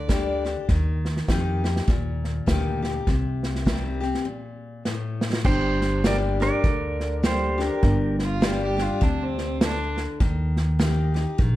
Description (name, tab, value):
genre	honky-tonk and classic country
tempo	101 BPM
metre	4/4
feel	swing 60% on 8ths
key	G minor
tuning	A4 = 440 Hz
part	clear fiddle	second line	0.0-0.4, 8.2-10.0 s	C4 to D5	-31 LUFS	right 4 dB	none
part	picked steel-string acoustic guitar	accompaniment	0.0-11.6 s	G2 to G4	-28 LUFS	left 4 dB	none
part	upright bass	bass	0.0-11.6 s	G1 to F2	-25 LUFS	equal	none
part	unplugged drum kit	drums	0.1-11.6 s	crash cymbal, hi-hat, kick drum, snare drum	-25 LUFS	equal	none
part	pedal steel guitar	melody	5.5-8.2 s	G4 to D5	-27 LUFS	right 3 dB	none
room	moderate large studio reverb, RT60 1.4 s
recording	dark, warm production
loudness	-21 LUFS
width	side -15 dB against mid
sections	0.0-5.5 A section; 5.5-11.6 B section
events	break 4.3-5.5; drum fill 4.9-5.5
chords	0.0 Gm; 0.7 Eb; 3.1 Cm; 5.5 Gm; 10.2 Eb